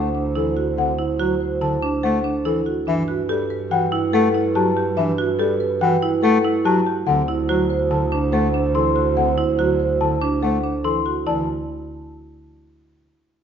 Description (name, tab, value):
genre	classical, minimalist pattern music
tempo	143 BPM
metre	5/4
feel	straight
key	D mixolydian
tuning	A4 = 440 Hz
part	buzzing marimba with soft mallets	melody	0.0-11.5 s	G4 to A5	-25 LUFS	left 7 dB	none
part	mellow French horn	second line	0.0-11.0 s	B4 to C5	-26 LUFS	right 5 dB	none
part	mellow bass clarinet	accompaniment	0.0-11.5 s	D3 to A3	-25 LUFS	left 2 dB	none
part	celesta	arpeggios	0.0-11.5 s	F#5 to C6	-26 LUFS	left 7 dB	none
part	marimba with medium mallets	arpeggios	0.0-11.5 s	C4 to C5	-23 LUFS	right 4 dB	none
part	rich double bass	bass	0.0-11.5 s	D2 to G2	-27 LUFS	right 1 dB	none
room	wet recital hall reverb, RT60 1.5 s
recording	recorded in a church or concert hall, nothing above 7.5 kHz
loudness	-18 LUFS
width	side -8 dB against mid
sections	0.0-11.3 A section; 11.3-13.4 B section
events	none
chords	0.0 D7; 2.9 Gmaj9; 7.1 D7; 11.3 D5